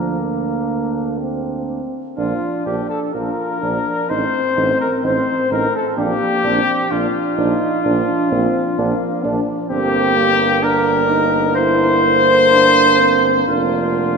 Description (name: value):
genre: classical, brass quintet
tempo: 64 BPM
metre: 4/4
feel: straight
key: Bb major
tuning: A4 = 438 Hz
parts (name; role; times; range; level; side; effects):
- warm trumpet; melody; 0.0-14.2 s; F4 to C5; -18 LUFS; left 6 dB; none
- warm flugelhorn; second line; 0.0-14.2 s; D4 to C5; -22 LUFS; right 6 dB; none
- clear trombone; accompaniment; 0.0-14.2 s; F3 to Eb4; -24 LUFS; right 4 dB; none
- warm French horn; accompaniment; 0.0-14.2 s; Bb3 to F4; -22 LUFS; left 1 dB; none
- warm tuba; bass; 0.0-14.2 s; F1 to D2; -22 LUFS; right 4 dB; none
room: wet church reverb, RT60 2.8 s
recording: nothing above 10.9 kHz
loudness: -14 LUFS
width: side -5 dB against mid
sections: 0.0-2.2 A section; 2.2-14.2 A section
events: none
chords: 0.0 Bb/D; 2.2 Bb; 4.1 Adim; 6.0 Bb; 9.7 Gm; 13.5 Bb/F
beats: 0.21 1.20 | 2.17 3.14 4.09 5.04 | 5.97 6.91 7.85 8.78 | 9.71 10.63 11.57 12.52 | 13.48